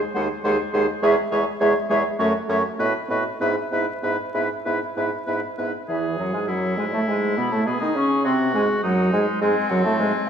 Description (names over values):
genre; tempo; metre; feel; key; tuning
quick classical-period movement for wind quintet; 100 BPM; 4/4; uneven beats, rubato; E major; A4 = 440 Hz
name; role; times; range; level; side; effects
silver concert flute; melody; 0.1-10.3 s; D#5 to D#6; -28 LUFS; left 3 dB; none
clear oboe; second line; 0.1-10.3 s; B#3 to C#5; -27 LUFS; left 2 dB; none
warm French horn; accompaniment; 0.1-10.1 s; E3 to D#4; -24 LUFS; equal; none
clear clarinet; accompaniment; 0.2-10.1 s; E3 to G#4; -28 LUFS; right 5 dB; none
clear bassoon; bass; 0.2-10.1 s; D#2 to D#3; -26 LUFS; right 2 dB; none
room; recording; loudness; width
wet scoring stage reverb, RT60 1.5 s; vinyl crackle; -20 LUFS; side -8 dB against mid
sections
0.0-5.9 A section; 5.9-10.3 A section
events
none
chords
0.0 G#/D#; 1.0 C#m/E; 2.2 F#m; 2.8 B7(no3)/A; 3.4 E/G#; 5.9 E; 8.3 G#7